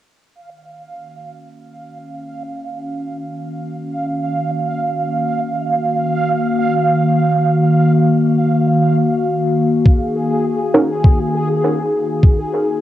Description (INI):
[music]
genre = ambient dub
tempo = free time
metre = none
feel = none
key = Eb minor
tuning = A4 = 440 Hz
[part]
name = warbly tape-like pad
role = sustained chords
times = 2.0-12.8 s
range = Eb3 to F5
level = -17 LUFS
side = left 1 dB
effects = chorus, built-in reverb
[part]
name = bubbling stepped-filter texture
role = texture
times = 0.4-12.8 s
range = Ab4 to F5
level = -21 LUFS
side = right 2 dB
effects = chorus, built-in reverb
[part]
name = electronic kick drum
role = drums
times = 9.9-12.4 s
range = none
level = -10 LUFS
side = equal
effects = cassette tape
[part]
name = filtered dub chord stab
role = stabs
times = 10.7-10.9 s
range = Db4 to Bb4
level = -16 LUFS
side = right 1 dB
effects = chorus, cassette tape, dub echo
[sound]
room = light reverb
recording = home recording on cassette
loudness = -14 LUFS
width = side -13 dB against mid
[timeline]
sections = 0.3-12.8 A section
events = filter sweep on ambient pad 0.3-12.8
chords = 0.3 Ebm7